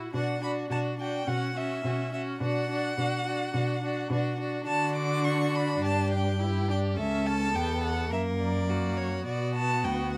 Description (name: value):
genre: quick classical-period movement for string quartet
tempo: 105 BPM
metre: 4/4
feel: rubato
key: B minor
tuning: A4 = 440 Hz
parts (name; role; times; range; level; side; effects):
- clear violin; second line; 0.0-10.2 s; F#4 to A#4; -37 LUFS; equal; none
- warm viola; accompaniment; 0.0-10.2 s; A#3 to E4; -35 LUFS; equal; none
- warm cello; bass; 0.0-10.2 s; C#2 to D3; -33 LUFS; equal; none
- rich violin; melody; 0.1-10.2 s; C#5 to D6; -35 LUFS; equal; none
room: little or no reverb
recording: close, detailed microphones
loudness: -29 LUFS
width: mono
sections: 0.0-10.2 A section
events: none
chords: 0.1 Bm; 1.3 F#5/B; 2.4 Bm; 4.7 D; 5.8 G5; 7.0 A13/C#; 8.1 F#; 9.3 Bm